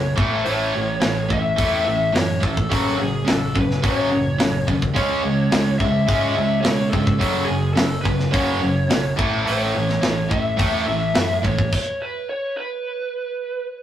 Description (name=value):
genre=hard rock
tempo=106 BPM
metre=4/4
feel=straight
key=unclear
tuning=A4 = 439 Hz
part: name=lead guitar through a small cranked amp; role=melody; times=0.0-13.7 s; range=G#4 to E5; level=-25 LUFS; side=left 1 dB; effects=overdrive, digital delay
part: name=cranked stack guitar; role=riff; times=0.0-11.7 s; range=F#2 to C#4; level=-24 LUFS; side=left 2 dB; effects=overdrive, spring reverb
part: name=high-gain distorted guitar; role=riff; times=0.0-11.7 s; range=F#2 to C#4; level=-23 LUFS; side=right 4 dB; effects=distortion
part: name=hollow-body short-scale fingered electric bass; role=bass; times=0.0-11.7 s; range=F#1 to B2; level=-29 LUFS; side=equal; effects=none
part: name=tight metal drum kit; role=drums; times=0.2-11.9 s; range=crash cymbal, hi-hat, kick drum, snare drum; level=-23 LUFS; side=equal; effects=none
room=wet studio reverb, RT60 0.5 s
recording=rough rehearsal-room recording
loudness=-18 LUFS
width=side -11 dB against mid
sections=0.0-13.8 A section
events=stop 11.7-13.8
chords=0.2 A; 2.7 F#m/A; 5.0 C#m; 7.2 F#5; 9.2 A; 11.7 N.C.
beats=| 0.46 1.02 1.58 2.14 | 2.70 3.27 3.83 4.39 | 4.96 5.52 6.08 6.65 | 7.21 7.77 8.34 8.90 | 9.47 10.03 10.60 11.16 | 11.72 12.29 12.85 13.42